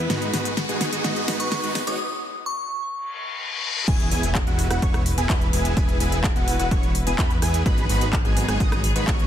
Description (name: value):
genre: EDM, festival progressive house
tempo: 127 BPM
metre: 4/4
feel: straight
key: E major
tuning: A4 = 439 Hz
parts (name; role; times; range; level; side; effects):
- clear symphonic string section; sustained chords; 0.0-9.3 s; F#3 to B4; -32 LUFS; left 1 dB; sidechain pumping
- supersaw chords; riff; 0.0-9.3 s; G#3 to D#5; -28 LUFS; right 1 dB; cassette tape, sidechain pumping, low-pass filter, dub echo
- fat analog bass; bass; 0.0-9.3 s; E1 to E2; -26 LUFS; equal; sidechain pumping
- riser, reverse cymbal and impact; sound effects; 0.0-5.8 s; none; -30 LUFS; left 2 dB; none
- pop drum kit; drums; 0.1-9.3 s; crash cymbal, handclaps, hi-hat, rim click, snare drum; -28 LUFS; equal; soft clipping on snare
- glassy synth bell; melody; 1.4-3.1 s; C#6 to D#6; -31 LUFS; equal; chorus, dub echo
- plucky unison lead; arpeggios; 3.9-9.3 s; F#5 to D#6; -30 LUFS; equal; ensemble chorus, sidechain pumping, dub echo
- electronic kick drum; drums; 3.9-9.2 s; none; -22 LUFS; equal; overdrive
room: light reverb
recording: dense, heavily limited modern master, high-pass filter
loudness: -20 LUFS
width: side -10 dB against mid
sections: 0.0-3.9 A section; 3.9-9.3 B section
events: build-up 0.0-3.9; drum fill 0.0-2.0; riser 0.0-2.0; filter sweep on supersaw synth 0.0-3.9; filter sweep 0.0-3.9; break 2.0-3.9; reverse cymbal 3.1-3.9; drop 3.9-9.3; impact 3.9-5.8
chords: 0.1 G#m7; 3.9 E; 7.7 G#m7